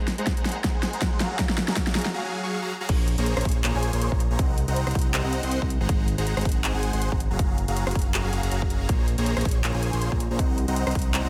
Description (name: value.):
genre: future bass.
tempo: 160 BPM.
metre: 4/4.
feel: swing 55% on 16ths, half-time.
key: Bb minor.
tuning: A4 = 440 Hz.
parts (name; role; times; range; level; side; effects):
supersaw chords; riff; 0.0-11.3 s; Gb3 to Db6; -32 LUFS; equal; phaser, sidechain pumping, low-pass filter, delay.
fat analog bass; bass; 0.0-11.3 s; Gb1 to Ab2; -29 LUFS; equal; sidechain pumping, high-pass filter.
big-room dance drum kit; drums; 0.1-11.2 s; crash cymbal, handclaps, hi-hat, rim click, snare drum; -32 LUFS; equal; overdrive.
electronic kick drum; drums; 0.3-11.0 s; none; -27 LUFS; equal; overdrive.
room: light reverb.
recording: none.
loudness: -25 LUFS.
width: mono.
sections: 0.0-2.9 A section; 2.9-11.3 B section.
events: build-up 0.0-2.9; drum fill 0.0-2.1; break 2.1-2.9; drop 2.9-11.3.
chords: 0.0 Ab9; 1.2 Gbmaj9; 2.9 Bbm9; 4.4 Cm7b5; 5.7 Ab9; 7.2 Gbmaj9; 8.9 Bbm9; 10.4 Cm7b5.